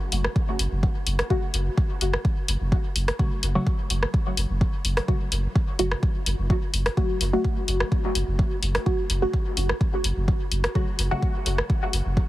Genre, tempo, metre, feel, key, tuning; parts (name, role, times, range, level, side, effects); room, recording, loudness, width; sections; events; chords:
dub techno; 127 BPM; 4/4; straight; F# minor; A4 = 440 Hz
filtered dub chord stab; stabs; 0.0-12.3 s; C#3 to F#4; -29 LUFS; equal; phaser, sidechain pumping, dub echo
pure sine sub bass; bass; 0.1-12.2 s; F#1; -25 LUFS; equal; sidechain pumping
deep house drum kit; drums; 0.1-12.0 s; hi-hat, rim click; -29 LUFS; left 1 dB; overdrive, dub echo
electronic kick drum; drums; 0.4-12.3 s; -24 LUFS; equal; overdrive
light reverb; heavily compressed radio sound, multiband compression; -22 LUFS; side -16 dB against mid
0.0-12.3 A section
filter sweep on synth stab 0.0-12.3
0.0 F#m